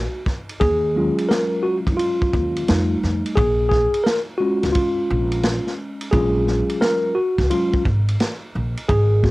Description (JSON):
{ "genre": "hip hop, jazz-hop", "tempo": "87 BPM", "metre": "4/4", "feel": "swing 65% on 16ths", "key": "unclear", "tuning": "A4 = 440 Hz", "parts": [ { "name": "mellow tine electric piano", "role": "accompaniment", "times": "0.0-9.3 s", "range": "Gb3 to Bb4", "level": "-19 LUFS", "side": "equal", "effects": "medium stereo tremolo, cassette tape" }, { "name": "upright bass", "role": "bass", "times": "0.0-9.3 s", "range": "Ab1 to Gb2", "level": "-21 LUFS", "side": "equal", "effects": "none" }, { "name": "vintage drum kit", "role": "drums", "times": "0.3-9.3 s", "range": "hi-hat, kick drum, ride cymbal, snare drum", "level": "-24 LUFS", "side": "equal", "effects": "cassette tape" } ], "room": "little or no reverb", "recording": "home recording on cassette", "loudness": "-17 LUFS", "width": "side -20 dB against mid", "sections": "0.0-9.3 A section", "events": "tine electric piano solo 0.0-9.3", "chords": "0.0 N.C.; 0.6 Ebm11; 2.7 F7; 3.4 Bbm7; 6.1 Ab13sus4", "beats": "| 0.61 1.30 1.99 2.68 | 3.37 4.06 4.75 5.44 | 6.13 6.82 7.51 8.20 | 8.89" }